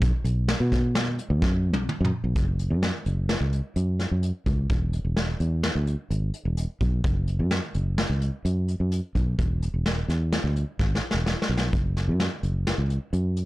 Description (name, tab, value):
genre	progressive instrumental, band music in an uneven meter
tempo	128 BPM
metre	5/4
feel	straight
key	unclear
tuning	A4 = 436 Hz
part	fingered electric bass	bass	0.0-13.4 s	E1 to B2	-24 LUFS	equal	none
part	vintage brush drum kit	drums	0.0-13.5 s	hi-hat, kick drum, snare drum, toms	-27 LUFS	equal	soft clipping on snare
room	little or no reverb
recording	blown-out, overdriven recording, overdrive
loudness	-23 LUFS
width	side -18 dB against mid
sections	0.0-2.4 A section; 2.4-13.5 B section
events	drum fill 1.4-2.4, 10.8-11.7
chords	none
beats	| 0.02 0.49 0.95 1.42 1.89 | 2.36 2.83 3.29 3.76 4.23 | 4.70 5.17 5.64 6.11 6.58 | 7.04 7.51 7.98 8.45 8.92 | 9.39 9.86 10.33 10.79 11.26 | 11.73 12.20 12.66 13.13